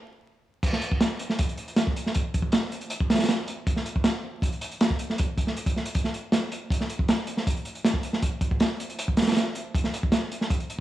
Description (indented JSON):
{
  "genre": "drum and bass",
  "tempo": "158 BPM",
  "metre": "4/4",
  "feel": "straight",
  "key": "none",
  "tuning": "none",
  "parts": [
    { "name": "crunchy breakbeat drum kit", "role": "drums", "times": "0.6-10.8 s", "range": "crash cymbal, hi-hat, kick drum, snare drum", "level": "-24 LUFS", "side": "right 1 dB", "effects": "none" }
  ],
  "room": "light reverb",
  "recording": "dry, gritty hardware recording, transformer saturation, vinyl crackle, high-pass filter, small room ambience",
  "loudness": "-24 LUFS",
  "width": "side -14 dB against mid",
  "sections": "0.6-10.8 A section",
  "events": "stop 0.0-0.6; drop 0.6-10.8",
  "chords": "none"
}